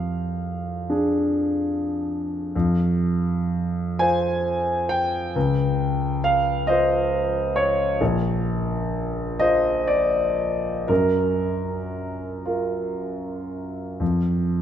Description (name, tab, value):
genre	classical, impressionist solo piano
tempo	35-46 BPM (dotted quarters)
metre	6/8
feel	rubato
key	unclear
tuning	A4 = 440 Hz
part	clear concert grand piano	solo	0.0-14.6 s	Bb1 to Ab5	-21 LUFS	equal	none
room	moderate concert hall reverb, RT60 2.4 s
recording	none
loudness	-21 LUFS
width	side -9 dB against mid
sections	0.0-2.5 A section; 2.5-14.6 B section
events	none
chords	0.0 Fm6; 2.5 Fm; 5.4 Dbmaj9; 8.0 Bbadd9; 10.9 Gbmaj7; 14.0 N.C.